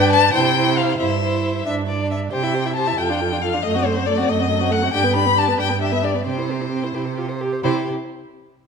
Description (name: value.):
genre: quick classical-period movement for string quartet.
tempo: 91 BPM (dotted quarters).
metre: 6/8.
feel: straight.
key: C major.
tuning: A4 = 441 Hz.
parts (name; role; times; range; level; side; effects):
warm violin; melody; 0.0-7.9 s; C5 to B5; -20 LUFS; left 6 dB; none.
warm violin; second line; 0.0-7.9 s; F4 to E5; -25 LUFS; left 2 dB; none.
dark viola; accompaniment; 0.0-7.9 s; A3 to G4; -24 LUFS; right 4 dB; none.
warm cello; bass; 0.0-7.9 s; F2 to C3; -24 LUFS; right 6 dB; none.
room: wet recital hall reverb, RT60 1.5 s.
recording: minimal, uncompressed stereo recording.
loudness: -17 LUFS.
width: side -6 dB against mid.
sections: 0.0-7.6 A section; 7.6-8.7 B section.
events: none.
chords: 0.3 C; 1.0 C/G; 1.7 G5; 2.3 C; 3.0 Dm/F; 3.6 F#dim7; 4.9 G; 6.3 C.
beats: 0.34 | 0.99 1.66 | 2.32 2.98 | 3.63 4.28 | 4.92 5.58 | 6.26 6.95 | 7.64.